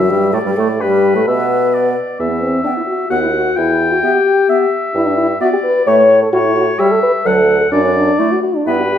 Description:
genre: quick classical-period movement for wind quintet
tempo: 130 BPM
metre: 3/4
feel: rubato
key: D major from 5.0 s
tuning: A4 = 440 Hz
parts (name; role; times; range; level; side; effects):
- mellow hollow concert flute; melody; 0.0-8.8 s; F#4 to G5; -23 LUFS; left 7 dB; none
- clear oboe; second line; 0.0-9.0 s; B4 to G5; -19 LUFS; left 3 dB; none
- clear clarinet; accompaniment; 0.0-8.8 s; F#3 to B3; -22 LUFS; right 7 dB; none
- mellow French horn; accompaniment; 0.0-9.0 s; B3 to C#5; -14 LUFS; left 1 dB; none
- mellow bassoon; bass; 0.0-9.0 s; D2 to B2; -19 LUFS; right 2 dB; none
room: wet recital hall reverb, RT60 1.4 s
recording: none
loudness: -11 LUFS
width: side -9 dB against mid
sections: 0.0-9.0 A section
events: none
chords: 0.3 D5; 0.8 G; 2.2 E5; 3.1 B/D#; 3.6 Em; 5.0 Em/G; 5.9 A; 6.3 A7; 7.3 D; 7.7 D/F#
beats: 0.34 | 0.81 1.27 1.74 | 2.19 2.65 3.11 | 3.57 4.04 4.49 | 4.95 5.41 5.88 | 6.33 6.79 7.26 | 7.72 8.19 8.67

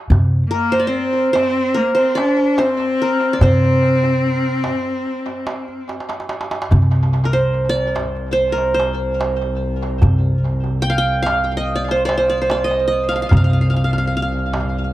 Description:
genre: Turkish makam ensemble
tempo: 73 BPM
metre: 4/4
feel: straight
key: C makam ussak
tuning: A4 = 440 Hz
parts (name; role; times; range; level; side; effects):
- upright bass; bass; 0.1-14.6 s; C3; -18 LUFS; equal; none
- darbuka; percussion; 0.1-14.9 s; none; -20 LUFS; right 1 dB; tape echo
- qanun; melody; 0.5-14.9 s; Bb4 to G5; -19 LUFS; right 1 dB; tape echo
- clear cello; second line; 0.5-5.9 s; Bb3 to D4-31c; -20 LUFS; left 2 dB; none
- muted double bass; drone; 6.7-14.9 s; C2; -24 LUFS; equal; none
room: light reverb, studio ambience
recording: echo-heavy mix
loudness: -15 LUFS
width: side -15 dB against mid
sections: 0.0-6.7 A section; 6.7-14.9 B section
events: drum fill 5.9-6.7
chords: none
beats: | 0.10 0.93 1.76 2.58 | 3.41 4.24 5.06 5.89 | 6.72 7.54 8.37 9.19 | 10.02 10.84 11.67 12.49 | 13.31 14.14

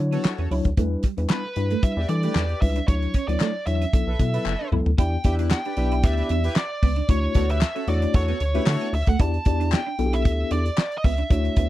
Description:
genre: early-eighties boogie funk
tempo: 114 BPM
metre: 4/4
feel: straight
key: E dorian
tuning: A4 = 440 Hz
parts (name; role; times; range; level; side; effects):
- mellow tine electric piano; accompaniment; 0.0-11.7 s; F#3 to E5; -27 LUFS; left 4 dB; medium stereo tremolo
- rubbery square bass; bass; 0.0-11.7 s; F#1 to E3; -24 LUFS; equal; none
- analog synth brass; second line; 0.1-8.9 s; E4 to E5; -34 LUFS; left 2 dB; chorus
- clean electric guitar; riff; 0.1-11.6 s; G3 to E4; -32 LUFS; right 10 dB; ensemble chorus
- damped 70s drum kit; drums; 0.1-11.7 s; handclaps, hi-hat, kick drum, snare drum, toms; -20 LUFS; equal; none
- group handclap; percussion; 0.2-10.9 s; none; -32 LUFS; left 22 dB; none
- nasal lead guitar with a parked wah; melody; 1.3-11.7 s; B4 to A5; -29 LUFS; right 2 dB; overdrive, slapback echo
room: little or no reverb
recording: dry, close 1970s-style studio recording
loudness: -20 LUFS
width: side -15 dB against mid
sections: 0.0-5.0 A section; 5.0-11.7 B section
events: drum fill 4.5-5.0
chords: 0.0 Dmaj9; 0.8 Em7; 2.9 Dmaj9; 3.9 B7sus4; 5.0 Em7; 7.1 Dmaj9; 9.2 Em7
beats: 0.25 | 0.78 1.30 1.83 2.35 | 2.88 3.41 3.93 4.46 | 4.99 5.51 6.04 6.57 | 7.09 7.62 8.14 8.67 | 9.20 9.72 10.25 10.78 | 11.30

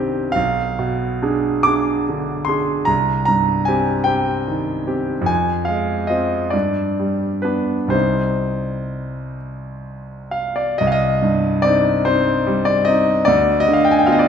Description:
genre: classical, romantic nocturne for solo piano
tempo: 41-51 BPM (dotted quarters)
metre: 12/8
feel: rubato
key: C minor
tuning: A4 = 440 Hz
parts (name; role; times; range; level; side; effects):
- clear concert grand piano; solo; 0.0-14.3 s; B1 to D6; -16 LUFS; equal; none
room: wet recital hall reverb, RT60 1.8 s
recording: minimal, uncompressed stereo recording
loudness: -16 LUFS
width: side -7 dB against mid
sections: 0.0-10.8 A section; 10.8-14.3 A section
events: none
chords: 0.4 Bdim7; 2.9 Cm; 5.3 Fm; 6.5 G; 7.9 Cm; 13.3 G7/D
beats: | 0.35 1.68 2.89 4.10 | 5.30 6.53 7.93 9.36 | 10.79 12.07 13.27

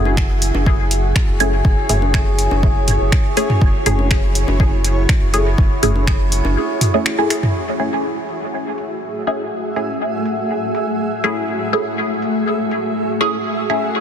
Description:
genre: dub techno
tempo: 122 BPM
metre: 4/4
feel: straight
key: F# minor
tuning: A4 = 440 Hz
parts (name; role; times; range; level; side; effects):
- granular cloud pad; sustained chords; 0.0-14.0 s; A3 to E5; -23 LUFS; equal; built-in reverb, sidechain pumping
- filtered dub chord stab; stabs; 0.0-13.9 s; A3 to G#4; -21 LUFS; equal; phaser, cassette tape, sidechain pumping, dub echo
- warm sub bass; bass; 0.0-6.6 s; F#1; -18 LUFS; equal; sidechain pumping
- metallic inharmonic drone; texture; 0.0-7.6 s; E4 to G#4; -27 LUFS; left 1 dB; chorus, built-in reverb, sidechain pumping
- electronic congas and toms; percussion; 0.1-7.5 s; none; -22 LUFS; equal; sidechain pumping on toms, sidechain pumping on perc, dub echo
- deep house drum kit; drums; 0.2-13.8 s; finger snaps, hi-hat; -25 LUFS; equal; low-pass filter on hats, soft clipping on snare, low-pass filter on snare, dub echo
- electronic kick drum; drums; 0.2-6.2 s; none; -16 LUFS; equal; none
room: light reverb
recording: dense, heavily limited modern master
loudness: -15 LUFS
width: side -8 dB against mid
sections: 0.0-7.5 A section; 7.5-14.0 B section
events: none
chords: 0.0 F#m9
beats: 0.17 0.67 1.16 | 1.65 2.14 2.63 3.12 | 3.62 4.11 4.60 5.09 | 5.58 6.08 6.57 7.06 | 7.55 8.04 8.53 9.03 | 9.52 10.01 10.50 10.99 | 11.48 11.98 12.47 12.96 | 13.45 13.94

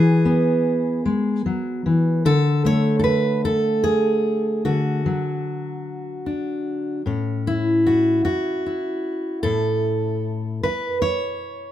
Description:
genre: folk, solo fingerstyle acoustic guitar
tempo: 50 BPM (dotted quarters)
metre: 6/8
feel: straight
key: A major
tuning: A4 = 439 Hz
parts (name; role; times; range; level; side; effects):
- fingerpicked steel-string acoustic guitar; solo; 0.0-11.7 s; A2 to C#5; -19 LUFS; equal; none
room: light reverb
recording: minimal, uncompressed stereo recording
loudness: -19 LUFS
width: side -12 dB against mid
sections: 0.0-7.1 A section; 7.1-11.7 B section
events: none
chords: 0.0 E; 2.3 D; 7.1 A6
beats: 1.06 | 2.26 3.46 | 4.66 5.86 | 7.06 8.26 | 9.46 10.65

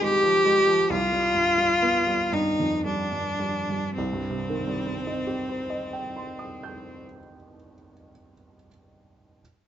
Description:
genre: classical, romantic duo for cello and grand piano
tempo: 51-70 BPM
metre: 3/4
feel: rubato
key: C minor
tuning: A4 = 436 Hz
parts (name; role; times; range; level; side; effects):
- rich cello; melody; 0.0-7.0 s; C4 to G4; -23 LUFS; left 1 dB; none
- dark baby grand piano; accompaniment; 0.0-9.4 s; C2 to G6; -30 LUFS; right 2 dB; none
room: moderate stone room reverb, RT60 1.3 s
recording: nothing above 7.7 kHz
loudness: -22 LUFS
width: side -10 dB against mid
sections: 0.0-4.0 A section; 4.0-7.2 B section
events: slowing down 0.0-4.0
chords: 0.0 Fm/C; 0.9 G7/C; 4.0 Cm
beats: 0.02 | 0.92 1.83 2.85 | 3.97 5.06 6.15

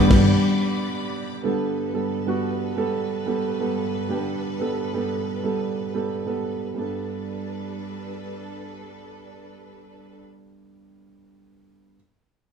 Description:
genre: pop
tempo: 90 BPM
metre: 4/4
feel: straight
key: G major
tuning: A4 = 439 Hz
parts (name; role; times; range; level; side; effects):
- dark cello; melody; 0.0-1.1 s; G3; -24 LUFS; left 7 dB; none
- warm upright piano; accompaniment; 0.0-12.0 s; G2 to B4; -24 LUFS; right 3 dB; none
- rich studio string section; sustained chords; 0.0-10.2 s; G2 to D6; -35 LUFS; left 2 dB; none
room: moderate studio ambience, RT60 0.5 s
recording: band playing live in one room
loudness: -23 LUFS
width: side -7 dB against mid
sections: 0.0-1.4 A section; 1.4-6.8 B section; 6.8-9.4 C section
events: band accent 0.0-1.4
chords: 0.0 G; 1.4 Gadd9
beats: 0.11 0.78 | 1.44 2.11 2.77 3.44 | 4.11 4.78 5.44 6.11 | 6.78 7.44 8.11 8.78

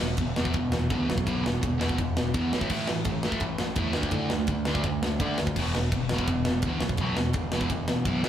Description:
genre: punk rock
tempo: 168 BPM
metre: 4/4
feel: straight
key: unclear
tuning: A4 = 440 Hz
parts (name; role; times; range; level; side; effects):
- sludgy distorted guitar; riff; 0.0-8.3 s; E2 to D4; -27 LUFS; equal; overdrive
- growling picked electric bass; bass; 0.0-8.3 s; E1 to D3; -32 LUFS; equal; overdrive
- tight metal drum kit; drums; 0.0-8.3 s; crash cymbal, kick drum, ride cymbal, snare drum; -29 LUFS; equal; none
room: moderate stone room reverb, RT60 1.0 s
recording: band playing live in one room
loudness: -24 LUFS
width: side -10 dB against mid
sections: 0.0-8.3 A section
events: none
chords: 0.0 E5; 2.5 A5; 4.0 D5; 5.6 E5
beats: 0.19 0.55 0.91 | 1.27 1.63 1.98 2.34 | 2.70 3.06 3.42 3.77 | 4.13 4.49 4.85 5.21 | 5.56 5.92 6.28 6.63 | 6.99 7.35 7.70 8.06

